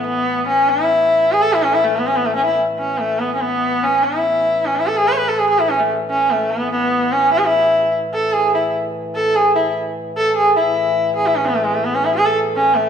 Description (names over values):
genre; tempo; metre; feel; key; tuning
indian classical, Hindustani; 146 BPM; 4/4; straight; A raga hamsadhwani; A4 = 439 Hz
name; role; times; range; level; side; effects
clear sarangi; melody; 0.0-12.9 s; G#3 to C#5; -15 LUFS; equal; none
pedal harmonium; drone; 0.0-12.9 s; A2 to E3; -28 LUFS; left 2 dB; none
room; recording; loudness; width
wet recital hall reverb, RT60 1.6 s; recorded in a church or concert hall; -14 LUFS; side -8 dB against mid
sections
0.0-10.6 A section; 10.6-12.9 B section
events
speeding up 0.0-12.9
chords
none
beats
0.26 | 0.68 1.10 1.53 1.95 | 2.37 2.78 3.20 3.62 | 4.03 4.45 4.86 5.28 | 5.69 6.10 6.51 6.92 | 7.33 7.73 8.14 8.54 | 8.95 9.35 9.76 10.16 | 10.56 10.96 11.36 11.76 | 12.16 12.55